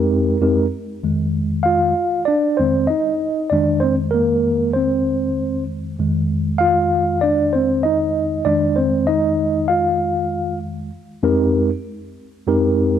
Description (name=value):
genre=hip hop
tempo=97 BPM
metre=4/4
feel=swing 58% on 16ths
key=F dorian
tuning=A4 = 443 Hz
part: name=mellow tine electric piano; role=solo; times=0.0-13.0 s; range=F2 to F5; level=-16 LUFS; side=equal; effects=medium stereo tremolo
room=moderate echo chamber reverb, RT60 1.8 s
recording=none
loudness=-16 LUFS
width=side -9 dB against mid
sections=0.0-1.0 A section; 1.0-10.9 A section; 10.9-13.0 B section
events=tine electric piano solo 1.0-10.9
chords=0.0 Fm11; 1.0 Fm7; 10.9 Fm11